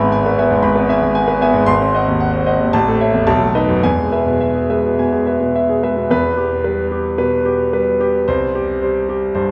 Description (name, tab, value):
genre	classical, virtuoso piano study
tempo	109 BPM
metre	4/4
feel	uneven beats, rubato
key	E major, E minor from 6.1 s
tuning	A4 = 441 Hz
part	clear concert grand piano	solo	0.0-9.5 s	G#1 to B#5	-16 LUFS	equal	none
room	wet church reverb, RT60 2.7 s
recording	recorded in a church or concert hall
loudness	-16 LUFS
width	mono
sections	0.0-6.1 A section; 6.1-9.5 B section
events	none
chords	0.0 E/G#; 1.7 G#7; 2.7 A; 3.3 B7; 3.8 E; 6.1 Em; 8.3 C5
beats	0.12 0.64 1.16 | 1.68 2.20 2.73 3.27 | 3.83 4.41 4.99 5.55 | 6.11 6.65 7.19 7.73 | 8.28 8.82 9.35